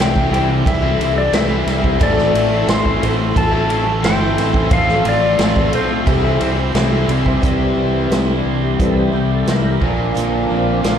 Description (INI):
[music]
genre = classic rock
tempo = 88 BPM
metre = 4/4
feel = straight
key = C mixolydian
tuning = A4 = 439 Hz
[part]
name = clean lap steel guitar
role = melody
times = 0.0-6.7 s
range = C5 to C6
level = -20 LUFS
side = left 3 dB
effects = slapback echo
[part]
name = octave-fuzz lead guitar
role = second line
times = 0.0-6.7 s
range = C4 to C5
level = -29 LUFS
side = right 2 dB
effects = none
[part]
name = picked steel-string acoustic guitar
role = accompaniment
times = 0.0-11.0 s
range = A2 to F4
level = -27 LUFS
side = right 4 dB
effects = none
[part]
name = warm upright piano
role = accompaniment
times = 0.0-7.4 s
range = E4 to C5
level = -30 LUFS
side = right 1 dB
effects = none
[part]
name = tonewheel organ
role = sustained chords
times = 0.0-11.0 s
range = E3 to F5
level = -24 LUFS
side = right 1 dB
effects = slow rotary speaker, overdrive, chorus vibrato
[part]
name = biting overdriven guitar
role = riff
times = 0.0-11.0 s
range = A2 to F4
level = -22 LUFS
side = left 10 dB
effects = spring reverb
[part]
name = biting overdriven guitar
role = riff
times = 0.0-11.0 s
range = A2 to F4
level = -24 LUFS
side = right 13 dB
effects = slapback echo
[part]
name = growling fingered electric bass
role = bass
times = 0.0-11.0 s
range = G1 to C2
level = -20 LUFS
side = right 1 dB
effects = overdrive
[part]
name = vintage drum kit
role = drums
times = 0.0-11.0 s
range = hi-hat, kick drum, ride cymbal, snare drum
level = -19 LUFS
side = equal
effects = none
[sound]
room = light reverb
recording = live gig heard through the venue's PA, club reverb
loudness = -14 LUFS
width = side -8 dB against mid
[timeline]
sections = 0.0-7.4 A section; 7.4-11.0 B section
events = tonewheel organ solo 7.4-11.0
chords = 0.0 C; 2.0 Am; 4.7 F/A; 6.1 C; 9.8 Bb